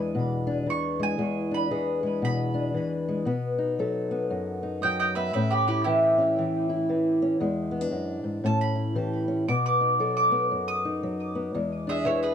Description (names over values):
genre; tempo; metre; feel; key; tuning
acoustic country blues, solo or duo; 116 BPM; 4/4; swing 62% on 8ths; E mixolydian; A4 = 438 Hz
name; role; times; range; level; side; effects
fingerpicked old ladder-braced acoustic guitar; accompaniment; 0.0-12.3 s; E2 to A4; -26 LUFS; left 1 dB; none
mandolin; melody; 0.7-12.3 s; E4 to D#6; -26 LUFS; right 1 dB; tape echo
room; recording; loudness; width
light reverb; dark, warm production; -24 LUFS; side -8 dB against mid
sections
0.0-11.5 A section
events
none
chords
0.0 E7; 3.3 B7; 5.3 A7; 7.4 E7; 8.4 A7; 9.5 B7; 11.5 E7